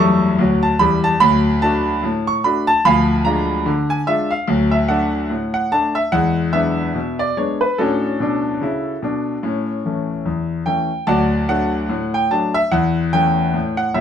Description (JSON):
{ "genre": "ragtime piano", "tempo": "73 BPM", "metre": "2/4", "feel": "swing 57% on 16ths", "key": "D major", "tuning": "A4 = 441 Hz", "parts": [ { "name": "clear grand piano", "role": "solo", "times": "0.0-14.0 s", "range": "Eb1 to E6", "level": "-16 LUFS", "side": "equal", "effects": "none" } ], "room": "moderate studio reverb, RT60 0.6 s", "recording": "band playing live in one room", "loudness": "-16 LUFS", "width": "side -8 dB against mid", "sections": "0.0-11.1 A section; 11.1-14.0 B section", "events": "none", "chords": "0.0 A7/E; 1.2 D; 2.9 Ddim; 4.5 D; 6.1 E7; 7.8 D/A; 9.4 A; 11.1 D; 12.7 A/E", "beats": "0.39 | 1.21 2.03 | 2.85 3.67 | 4.49 5.31 | 6.13 6.95 | 7.78 8.61 | 9.43 10.26 | 11.08 11.91 | 12.73 13.55" }